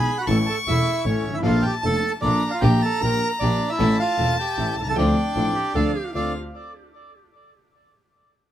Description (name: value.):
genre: tango.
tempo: 154 BPM.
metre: 3/4.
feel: rubato.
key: D harmonic minor.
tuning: A4 = 440 Hz.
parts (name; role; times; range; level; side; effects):
bandoneon; melody; 0.0-6.3 s; C#4 to Bb5; -25 LUFS; right 3 dB; tape echo.
warm violin; second line; 0.0-6.3 s; F5 to C#6; -28 LUFS; left 3 dB; none.
clear upright piano; accompaniment; 0.0-6.3 s; E1 to A4; -25 LUFS; left 1 dB; none.
rich double bass; bass; 0.0-6.3 s; E1 to D2; -24 LUFS; equal; none.
rich chamber string section; stabs; 1.5-6.3 s; A3 to A4; -34 LUFS; equal; none.
clear clarinet; second line; 5.6-6.3 s; G4 to A4; -31 LUFS; right 5 dB; tape echo.
room: light reverb.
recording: close, detailed microphones.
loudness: -19 LUFS.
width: side -11 dB against mid.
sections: 0.0-6.1 A section; 6.1-7.3 B section.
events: none.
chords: 0.3 A; 1.5 Bbmaj7; 2.6 Gm7/Bb; 3.8 A; 5.0 Dm7.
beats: | 0.28 0.67 1.06 | 1.45 1.84 2.24 | 2.63 3.02 3.41 | 3.80 4.19 4.58 | 4.97 5.36 5.75 | 6.15.